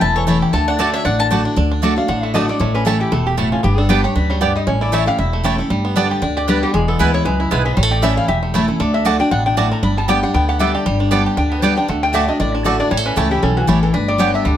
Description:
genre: bluegrass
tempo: 233 BPM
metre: 4/4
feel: swing 56% on 8ths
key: D major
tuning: A4 = 440 Hz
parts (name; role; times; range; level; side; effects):
- bluegrass banjo; melody; 0.0-14.6 s; D3 to G4; -22 LUFS; right 2 dB; none
- mandolin; melody; 0.0-1.3 s; C#5 to A5; -20 LUFS; left 4 dB; none
- lap resonator guitar; second line; 0.0-14.6 s; E4 to B5; -21 LUFS; left 2 dB; none
- picked steel-string acoustic guitar; accompaniment; 0.0-14.6 s; E2 to G4; -19 LUFS; left 2 dB; none
- upright bass; bass; 0.0-14.6 s; E1 to D2; -20 LUFS; equal; none
- mandolin; stabs; 0.3-14.3 s; A3 to A5; -20 LUFS; right 6 dB; none
room: moderate studio reverb, RT60 0.6 s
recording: none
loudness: -14 LUFS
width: side -10 dB against mid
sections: 0.0-1.6 A section; 1.6-9.8 B section; 9.8-14.6 B section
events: resonator guitar played with a steel bar solo 1.6-14.6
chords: 0.0 A; 0.5 D; 2.6 A; 3.6 G; 4.7 A; 5.7 Gadd9; 6.7 E; 7.8 A; 8.8 D; 9.8 G; 11.9 D; 12.9 A; 13.9 G

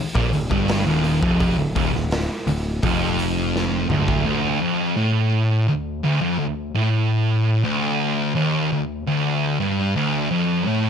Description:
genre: stoner and doom metal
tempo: 84 BPM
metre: 4/4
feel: straight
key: unclear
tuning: A4 = 439 Hz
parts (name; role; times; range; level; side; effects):
- thick fuzz guitar; riff; 0.1-10.9 s; D2 to Bb2; -22 LUFS; left 6 dB; distortion
- modern bright picked electric bass; bass; 0.1-4.2 s; D1 to Bb1; -25 LUFS; equal; tube saturation
- fuzz guitar; riff; 0.2-10.9 s; D2 to Bb2; -22 LUFS; right 8 dB; distortion
- raw garage drum kit; drums; 0.2-4.2 s; hi-hat, kick drum, snare drum, toms; -25 LUFS; equal; none
room: light reverb, studio ambience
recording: none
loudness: -18 LUFS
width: side -7 dB against mid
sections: 0.0-4.3 A section; 4.3-10.9 B section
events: drum fill 3.5-4.3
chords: 0.0 Dm

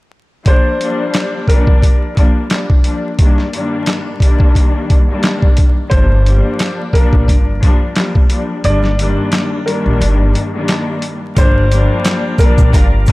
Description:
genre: hip hop, boom-bap hip-hop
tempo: 88 BPM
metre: 4/4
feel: swing 56% on 16ths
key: G minor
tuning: A4 = 442 Hz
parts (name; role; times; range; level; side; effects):
- muted studio string section; accompaniment; 0.4-13.1 s; G2 to D4; -18 LUFS; left 2 dB; high-pass filter, low-pass filter
- bright upright piano; melody; 0.5-13.1 s; Bb4 to D5; -21 LUFS; equal; high-pass filter, low-pass filter, digital delay
- boom bap sampler-style drum kit; drums; 0.5-13.1 s; handclaps, hi-hat, kick drum, snare drum; -12 LUFS; equal; none
- upright bass; bass; 5.9-13.0 s; G1 to Bb1; -14 LUFS; equal; none
- tonewheel organ; sustained chords; 11.4-13.1 s; G4 to D6; -28 LUFS; right 2 dB; stopped rotary speaker, high-pass filter, low-pass filter
- tube shaker; percussion; 11.4-13.1 s; none; -35 LUFS; right 6 dB; none
- warm studio string section; stabs; 12.7-13.0 s; G3 to Bb4; -24 LUFS; equal; high-pass filter, low-pass filter, digital delay
room: little or no reverb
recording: dark, warm production, vinyl crackle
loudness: -11 LUFS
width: side -20 dB against mid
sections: 0.5-11.4 A section; 11.4-13.1 B section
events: break 8.6-11.4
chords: 0.5 Gm7; 3.2 Ebmaj7/G; 5.9 Gm7; 8.6 Ebmaj7/G; 11.4 Gm7

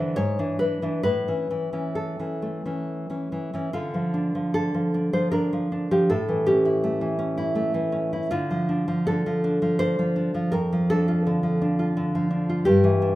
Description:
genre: romantic piece for solo classical guitar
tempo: 64-86 BPM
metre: 3/4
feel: rubato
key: D minor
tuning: A4 = 439 Hz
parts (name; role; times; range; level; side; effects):
- nylon-string guitar; solo; 0.0-13.2 s; F2 to C#5; -22 LUFS; equal; none
room: moderate recital hall reverb, RT60 1.6 s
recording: minimal, uncompressed stereo recording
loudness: -22 LUFS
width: side -16 dB against mid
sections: 0.0-3.7 A section; 3.7-13.2 B section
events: none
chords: 0.2 E7/G#; 1.0 A; 3.7 Dm; 6.1 A7; 8.3 Dm; 10.5 Dm/F

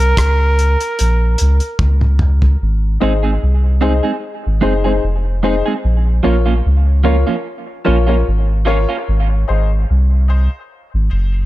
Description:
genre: dub reggae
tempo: 74 BPM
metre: 4/4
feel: swing 56% on 16ths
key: unclear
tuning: A4 = 440 Hz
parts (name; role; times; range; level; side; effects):
- clear flugelhorn; melody; 0.0-1.8 s; Bb4; -20 LUFS; right 2 dB; dub echo
- soft dub sub bass; bass; 0.0-11.5 s; F1 to Db2; -13 LUFS; equal; none
- cloth-damped thuddy drum kit; drums; 0.2-2.6 s; hi-hat, kick drum, rim click, toms; -18 LUFS; equal; none
- clean electric guitar; accompaniment; 3.0-9.0 s; F3 to Ab4; -20 LUFS; right 6 dB; spring reverb, high-pass filter, dub echo
- warm upright piano; stabs; 3.0-11.5 s; Eb4 to Db5; -21 LUFS; left 6 dB; high-pass filter, dub echo
room: small room ambience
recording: none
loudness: -13 LUFS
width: side -16 dB against mid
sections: 0.0-2.6 A section; 2.6-11.5 B section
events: break 0.0-2.6; drum fill 1.8-2.6; filter sweep 5.8-11.5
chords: 0.0 Bbm; 2.6 Ab; 5.8 Bbm; 9.1 Ab

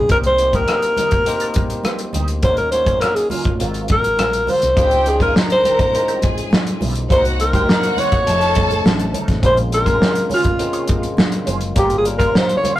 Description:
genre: lush 1970s-style soul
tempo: 103 BPM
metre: 4/4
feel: straight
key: unclear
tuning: A4 = 440 Hz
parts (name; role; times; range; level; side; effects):
- warm alto saxophone; melody; 0.0-12.8 s; F4 to F5; -17 LUFS; equal; none
- overdriven tine electric piano; accompaniment; 0.0-12.8 s; G3 to Db5; -28 LUFS; left 3 dB; none
- hollow-body short-scale fingered electric bass; bass; 0.0-12.3 s; F1 to Eb2; -22 LUFS; equal; none
- clean electric guitar; riff; 0.1-12.8 s; Gb3 to Db5; -29 LUFS; right 3 dB; wah
- warm soul drum kit; drums; 0.1-12.8 s; hi-hat, kick drum, rim click, snare drum; -18 LUFS; equal; none
- congas; percussion; 0.3-12.8 s; none; -30 LUFS; right 3 dB; none
- rich studio violin section; second line; 4.8-9.1 s; Gb4 to Bb5; -22 LUFS; equal; none
- percussive tonewheel organ; sustained chords; 4.8-12.8 s; Db3 to F4; -32 LUFS; equal; none
room: moderate small room reverb, RT60 0.5 s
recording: rough rehearsal-room recording, tube saturation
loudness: -14 LUFS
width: side -14 dB against mid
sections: 0.0-12.8 A section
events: alto saxophone solo 0.0-12.8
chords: 0.1 Cm7; 2.4 Ebm7; 3.6 Ab13; 4.8 Dbmaj9#11; 7.1 Cm7b5; 8.3 F7b13; 9.4 Bbm9; 11.8 Gm7b5

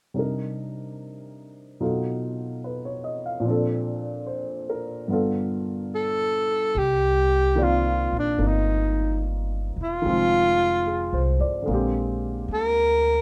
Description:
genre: jazz ballad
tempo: 73 BPM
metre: 4/4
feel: swing 66% on 8ths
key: C dorian, C minor from 6.7 s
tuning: A4 = 440 Hz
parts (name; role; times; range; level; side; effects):
- warm baby grand piano; accompaniment; 0.1-13.2 s; G2 to E#5; -30 LUFS; equal; none
- breathy alto saxophone; melody; 6.0-13.2 s; D4 to Bb4; -24 LUFS; equal; none
- upright bass; bass; 6.8-13.2 s; E1 to D2; -28 LUFS; equal; none
room: light reverb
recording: none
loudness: -24 LUFS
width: mono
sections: 0.2-6.7 A section; 6.7-13.2 B section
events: none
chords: 0.2 Cm7; 1.8 B7#11; 3.4 Bbmaj7; 5.1 G7; 6.7 Cm11; 10.0 Fm7; 11.7 Bb13

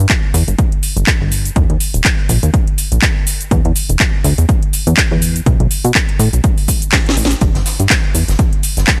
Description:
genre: piano house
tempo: 123 BPM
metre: 4/4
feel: swing 56% on 16ths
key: unclear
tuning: A4 = 440 Hz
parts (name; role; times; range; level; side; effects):
- plucky analog bass; bass; 0.0-8.8 s; Eb1 to B2; -16 LUFS; equal; sidechain pumping
- house drum kit; drums; 0.0-9.0 s; handclaps, hi-hat, shaker, snare drum; -19 LUFS; equal; overdrive
- electronic kick drum; drums; 0.1-9.0 s; none; -17 LUFS; equal; overdrive
- swinging big-band drum kit; drums; 7.4-9.0 s; hi-hat, snare drum; -31 LUFS; equal; sidechain pumping on hats, high-pass filter on hats, high-pass filter on snare, high-pass filter on room
room: little or no reverb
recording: none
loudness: -14 LUFS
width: mono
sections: 0.0-9.0 A section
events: drum fill 6.9-7.4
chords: none

